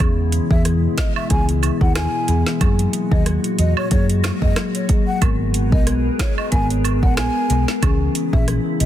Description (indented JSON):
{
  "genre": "dancehall",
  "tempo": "92 BPM",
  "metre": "4/4",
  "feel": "swing 56% on 16ths",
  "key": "G# minor",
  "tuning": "A4 = 440 Hz",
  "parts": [
    { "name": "marimba with medium mallets", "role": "accompaniment", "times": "0.0-8.5 s", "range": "E3 to A#4", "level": "-23 LUFS", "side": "left 4 dB", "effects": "sidechain pumping" },
    { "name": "glassy FM pad", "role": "sustained chords", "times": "0.0-8.9 s", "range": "A#2 to A#4", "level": "-27 LUFS", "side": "right 1 dB", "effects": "ensemble chorus, built-in reverb, sidechain pumping" },
    { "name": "hollow-body short-scale fingered electric bass", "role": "bass", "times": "0.0-8.9 s", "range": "G#1 to F#2", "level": "-19 LUFS", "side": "equal", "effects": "none" },
    { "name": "afro-pop drum kit", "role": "drums", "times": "0.0-8.9 s", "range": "finger snaps, hi-hat, kick drum, rim click, snare drum", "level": "-19 LUFS", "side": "equal", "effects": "overdrive, soft clipping on snare" },
    { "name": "woodblock and cabasa", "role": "percussion", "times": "0.0-8.9 s", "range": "none", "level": "-30 LUFS", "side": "right 12 dB", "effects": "none" },
    { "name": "mellow hollow concert flute", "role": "melody", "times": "0.5-8.9 s", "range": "C#5 to G#5", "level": "-27 LUFS", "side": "left 1 dB", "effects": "tape echo" }
  ],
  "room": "small room ambience",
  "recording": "dense, heavily limited modern master",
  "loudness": "-16 LUFS",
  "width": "side -12 dB against mid",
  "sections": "0.0-8.9 A section",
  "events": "none",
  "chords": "0.0 E; 2.6 F#add9; 5.2 G#madd9; 7.8 C#m"
}